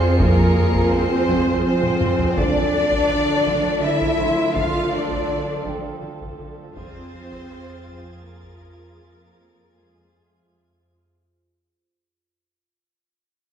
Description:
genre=cinematic, suspense film score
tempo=82 BPM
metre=3/4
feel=straight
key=unclear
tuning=A4 = 440 Hz
part: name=rich symphonic violin section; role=melody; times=0.0-10.5 s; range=Ab4 to F5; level=-25 LUFS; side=left 3 dB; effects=none
part: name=rich symphonic violin section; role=second line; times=0.0-10.5 s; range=Ab4 to F5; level=-27 LUFS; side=right 1 dB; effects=none
part: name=clear symphonic viola section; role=accompaniment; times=0.0-11.1 s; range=F3 to A4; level=-29 LUFS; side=right 2 dB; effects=none
part: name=glass harmonica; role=sustained chords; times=0.0-11.3 s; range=D4 to A5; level=-31 LUFS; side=right 2 dB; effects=none
part: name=mellow French horn section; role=sustained chords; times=0.0-10.5 s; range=Ab3 to F4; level=-27 LUFS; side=left 2 dB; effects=none
part: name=clear studio cello section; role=riff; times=0.0-11.1 s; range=F2 to D3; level=-28 LUFS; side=right 1 dB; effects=none
part: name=rich symphonic cello section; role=bass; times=0.0-10.5 s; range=Ab3 to F4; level=-26 LUFS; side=right 1 dB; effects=none
part: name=rich symphonic double bass section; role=bass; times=0.0-11.1 s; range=D2 to F2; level=-26 LUFS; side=right 1 dB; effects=none
part: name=rich chamber violin section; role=texture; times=0.0-2.0, 6.8-10.9 s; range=Ab6 to C#7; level=-39 LUFS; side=left 2 dB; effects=none
part: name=vibraphone with soft mallets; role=texture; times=0.0-11.3 s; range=C5 to D6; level=-39 LUFS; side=right 4 dB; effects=none
part: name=taiko ensemble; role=drums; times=0.2-9.2 s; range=none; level=-27 LUFS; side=equal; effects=none
room=wet recital hall reverb, RT60 1.6 s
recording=recorded in a church or concert hall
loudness=-17 LUFS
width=side -8 dB against mid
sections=0.0-11.3 A section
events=fade-out 0.0-11.3; drum fill 1.8-2.4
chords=0.0 Fm; 2.4 Dm; 6.8 Fm

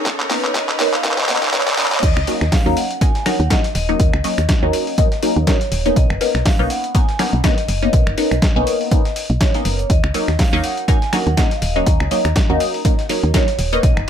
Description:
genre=deep house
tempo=122 BPM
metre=4/4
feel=swing 56% on 16ths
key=Eb minor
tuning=A4 = 440 Hz
part: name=warbly tape-like pad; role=sustained chords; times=0.0-2.0 s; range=C#4 to C#5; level=-33 LUFS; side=left 2 dB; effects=none
part: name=filtered dub chord stab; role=stabs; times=0.0-14.1 s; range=Gb3 to D#4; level=-21 LUFS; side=equal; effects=phaser, wide subtle chorus, cassette tape, sidechain pumping
part: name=riser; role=sound effects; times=0.0-2.0 s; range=none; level=-26 LUFS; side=right 1 dB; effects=none
part: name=clear symphonic string section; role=texture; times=0.0-2.0 s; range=B3 to Bb5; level=-32 LUFS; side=left 1 dB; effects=none
part: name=string machine, violins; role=texture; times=0.0-2.0 s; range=none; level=barely audible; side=none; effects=none
part: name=dusty soul sampler-style drum kit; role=drums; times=0.1-14.1 s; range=crash cymbal, finger snaps, handclaps, hi-hat, snare drum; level=-22 LUFS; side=equal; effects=overdrive
part: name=electronic kick drum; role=drums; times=0.1-13.9 s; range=none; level=-16 LUFS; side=equal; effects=high-pass filter on kick, high-pass filter on room
part: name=vibraphone with medium hard mallets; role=melody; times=0.3-14.1 s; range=B4 to Ab5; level=-25 LUFS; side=left 1 dB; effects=ping-pong delay
part: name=woody FM bass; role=bass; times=2.0-14.1 s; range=Eb1 to Eb2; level=-19 LUFS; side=equal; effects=sidechain pumping
part: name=breakbeat sampler-style drum kit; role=drums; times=2.0-14.0 s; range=hi-hat, snare drum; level=-33 LUFS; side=equal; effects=overdrive, high-pass filter on hats, high-pass filter on snare, high-pass filter on room
room=light reverb, digital ambience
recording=high-pass filter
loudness=-14 LUFS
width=side -9 dB against mid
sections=0.0-2.0 A section; 2.0-14.1 B section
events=build-up 0.0-2.0; drum fill 0.0-2.0; riser 0.0-2.0; drop 2.0-14.1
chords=0.0 Bmaj9; 2.0 Ebm7; 6.0 Bmaj9; 9.9 Ebm7

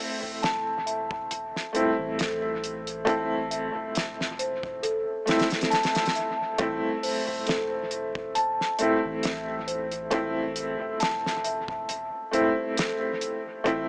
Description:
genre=trip hop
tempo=68 BPM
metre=4/4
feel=swing 54% on 16ths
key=A minor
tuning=A4 = 440 Hz
part: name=bright upright piano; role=accompaniment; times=0.0-13.9 s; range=A3 to E4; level=-28 LUFS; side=equal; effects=tremolo, tape echo
part: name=celesta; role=arpeggios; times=0.0-13.9 s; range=A4 to A5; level=-29 LUFS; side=equal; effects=low-pass filter, tape echo
part: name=round analog bass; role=bass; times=0.2-13.9 s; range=E1 to A1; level=-46 LUFS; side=equal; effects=none
part: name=damped 70s drum kit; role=drums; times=0.4-13.9 s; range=hi-hat, kick drum, snare drum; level=-30 LUFS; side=equal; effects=dub echo
room=light reverb, studio ambience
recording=echo-heavy mix, small speaker sound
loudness=-25 LUFS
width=side -32 dB against mid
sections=0.0-13.9 A section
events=filter sweep on celesta 0.0-13.9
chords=0.0 Am

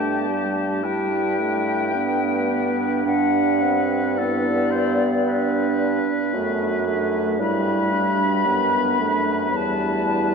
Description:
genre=classical, slow romantic movement for wind quintet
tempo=55 BPM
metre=4/4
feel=rubato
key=G major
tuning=A4 = 436 Hz
part: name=silver concert flute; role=melody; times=0.0-10.3 s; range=D5 to B5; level=-24 LUFS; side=left 5 dB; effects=none
part: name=warm oboe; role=second line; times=0.0-10.3 s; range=G4 to C5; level=-28 LUFS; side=left 2 dB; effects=none
part: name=clear French horn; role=accompaniment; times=0.0-10.3 s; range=G3 to D4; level=-25 LUFS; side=left 1 dB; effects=none
part: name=dark clarinet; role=accompaniment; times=0.0-10.3 s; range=D4 to F#4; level=-25 LUFS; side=right 8 dB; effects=none
part: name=clear bassoon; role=bass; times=0.0-10.3 s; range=E2 to G2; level=-27 LUFS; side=right 2 dB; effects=none
room=wet cathedral reverb, RT60 5.0 s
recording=dark, warm production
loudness=-19 LUFS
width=side -5 dB against mid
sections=0.0-10.3 A section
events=none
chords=0.0 G; 3.0 D7/G; 7.4 G; 9.5 Em

